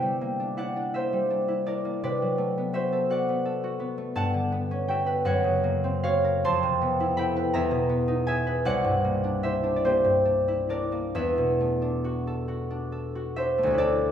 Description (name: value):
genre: classical, solo harp piece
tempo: 43-57 BPM (dotted quarters)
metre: 6/8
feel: rubato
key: unclear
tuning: A4 = 439 Hz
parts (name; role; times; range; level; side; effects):
- concert harp; solo; 0.0-14.1 s; C2 to C6; -24 LUFS; equal; none
room: wet recital hall reverb, RT60 1.5 s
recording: heard from further back in the room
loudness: -24 LUFS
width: side -9 dB against mid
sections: 0.0-13.8 A section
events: none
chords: 0.0 C9; 2.0 Bm7/C; 4.2 Gmaj7#11; 5.3 F#; 6.4 Fmaj7#11; 7.5 Emaj7#11; 8.7 C9; 11.1 Em11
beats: 0.95 | 2.04 3.11 | 4.16 5.26 | 6.45 7.54 | 8.65 9.84 | 11.15 12.49 | 13.79